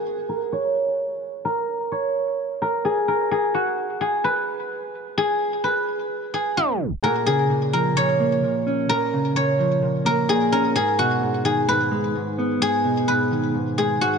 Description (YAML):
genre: hip hop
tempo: 129 BPM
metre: 4/4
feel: half-time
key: Bb phrygian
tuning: A4 = 440 Hz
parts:
  - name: guzheng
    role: melody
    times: 0.0-14.2 s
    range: Gb4 to Db5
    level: -21 LUFS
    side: equal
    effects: low-pass filter, ping-pong delay
  - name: mellow electric guitar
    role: accompaniment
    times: 7.0-14.2 s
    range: Ab2 to Db4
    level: -23 LUFS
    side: equal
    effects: low-pass filter
room: moderate lush hall reverb, RT60 3.0 s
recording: tape stop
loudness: -20 LUFS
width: side -6 dB against mid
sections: 0.0-7.0 A section; 7.0-14.2 B section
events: filter sweep on guzheng 0.0-7.0; tape stop 6.6-7.0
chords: 0.0 N.C.; 7.0 Bbm; 10.8 Abm